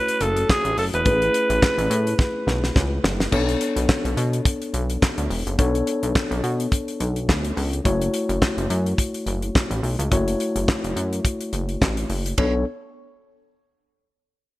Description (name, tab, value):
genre	early-eighties boogie funk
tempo	106 BPM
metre	4/4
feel	swing 56% on 16ths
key	B dorian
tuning	A4 = 440 Hz
part	growling alto saxophone	melody	0.0-2.7 s	G#4 to B4	-23 LUFS	right 1 dB	tape echo
part	mellow tine electric piano	accompaniment	0.0-12.6 s	A3 to C#5	-26 LUFS	left 2 dB	none
part	damped 70s drum kit	drums	0.1-12.5 s	crash cymbal, handclaps, hi-hat, kick drum, ride cymbal, snare drum	-22 LUFS	equal	gated reverb
part	chorused synth bass	bass	0.2-12.6 s	E1 to B2	-24 LUFS	equal	none
room	small room ambience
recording	none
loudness	-20 LUFS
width	side -17 dB against mid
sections	0.0-3.3 A section; 3.3-12.4 B section; 12.4-14.6 C section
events	drum fill 2.2-3.3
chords	0.0 F#m7; 1.1 Amaj9; 3.3 Bm9; 7.9 F#m7; 12.4 Bm9